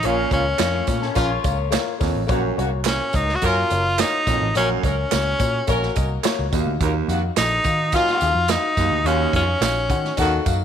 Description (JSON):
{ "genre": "uptempo 1960s-style soul", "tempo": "106 BPM", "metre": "4/4", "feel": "straight", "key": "unclear", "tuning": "A4 = 440 Hz", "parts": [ { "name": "edgy tenor saxophone", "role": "melody", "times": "0.0-10.4 s", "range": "Db4 to Gb4", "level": "-22 LUFS", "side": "left 1 dB", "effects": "none" }, { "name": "warm horn section", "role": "second line", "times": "0.0-10.6 s", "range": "Bb2 to Bb4", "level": "-26 LUFS", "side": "right 1 dB", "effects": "none" }, { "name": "clear upright piano", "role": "accompaniment", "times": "0.0-10.6 s", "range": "Bb2 to Gb5", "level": "-27 LUFS", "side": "left 12 dB", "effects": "none" }, { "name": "breathy baritone saxophone", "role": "riff", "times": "0.0-9.4 s", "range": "Eb2 to Bb2", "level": "-27 LUFS", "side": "right 13 dB", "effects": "none" }, { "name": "vintage muted picked electric bass", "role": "bass", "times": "0.0-10.6 s", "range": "Gb1 to Eb3", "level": "-24 LUFS", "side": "equal", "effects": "none" }, { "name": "natural country drum kit", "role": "drums", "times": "0.0-10.6 s", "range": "hi-hat, kick drum, snare drum", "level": "-25 LUFS", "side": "right 3 dB", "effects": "none" }, { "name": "tambourine and handclaps", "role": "percussion", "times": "0.0-10.6 s", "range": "none", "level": "-32 LUFS", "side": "right 13 dB", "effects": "none" }, { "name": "electric guitar through a small old amp", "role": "riff", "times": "0.6-2.1 s", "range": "A3 to Db5", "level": "-30 LUFS", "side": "left 14 dB", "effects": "phaser" } ], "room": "light reverb, small room ambience", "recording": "1960s-style stereo with parts hard left and right", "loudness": "-18 LUFS", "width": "side -8 dB against mid", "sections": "0.0-10.6 A section", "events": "none", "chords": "0.0 Bbm; 2.3 Gb; 6.5 Ebmadd9", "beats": "| 0.03 0.60 1.16 1.73 | 2.29 2.86 3.42 3.99 | 4.55 5.11 5.68 6.24 | 6.80 7.37 7.93 8.49 | 9.05 9.62 10.18" }